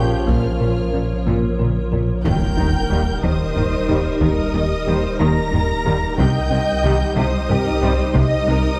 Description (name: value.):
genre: cinematic, hybrid orchestral and electronic film score.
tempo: 61 BPM (dotted quarters).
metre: 6/8.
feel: straight.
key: unclear.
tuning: A4 = 440 Hz.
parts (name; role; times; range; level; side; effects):
warm symphonic violin section; melody; 0.0-8.8 s; Eb6 to Bb6; -34 LUFS; equal; none.
warm symphonic violin section; second line; 0.0-8.8 s; Eb5 to Bb5; -32 LUFS; equal; none.
rich symphonic viola section; accompaniment; 0.0-8.8 s; F4 to Eb5; -29 LUFS; equal; none.
clear trombone section; sustained chords; 0.0-7.9 s; Db3 to G3; -33 LUFS; equal; none.
mellow French horn section; sustained chords; 0.0-7.9 s; F3 to G4; -35 LUFS; equal; none.
swarming drone; sustained chords; 0.0-8.8 s; F3 to Db5; -27 LUFS; equal; built-in reverb.
thumb-piano-like synth pluck; arpeggios; 0.0-8.7 s; C3 to Bb4; -30 LUFS; equal; none.
rubbery square bass; riff; 0.0-8.7 s; C2 to Bb2; -27 LUFS; equal; none.
rich studio cello section; bass; 0.0-8.6 s; Bb2 to Eb3; -29 LUFS; equal; none.
saturated sub bass; bass; 0.0-8.8 s; Eb1 to C2; -28 LUFS; equal; none.
warm symphonic double bass section; bass; 0.0-8.6 s; Bb1 to Eb2; -28 LUFS; equal; none.
bright baby grand piano; texture; 0.0-8.8 s; Db4 to Eb5; -35 LUFS; equal; none.
taiko ensemble; drums; 0.3-8.8 s; none; -29 LUFS; equal; none.
impact; sound effects; 2.3-4.2 s; none; -28 LUFS; equal; none.
room: wet scoring stage reverb, RT60 2.1 s.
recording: dark, warm production.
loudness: -19 LUFS.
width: mono.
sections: 0.0-2.3 A section; 2.3-8.8 B section.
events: drum fill 1.3-2.3; impact 2.3-4.2.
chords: 0.0 Bbm; 2.3 Eb; 6.2 Cm.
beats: | 0.29 1.27 | 2.25 3.24 | 4.22 5.21 | 6.19 7.17 | 8.16.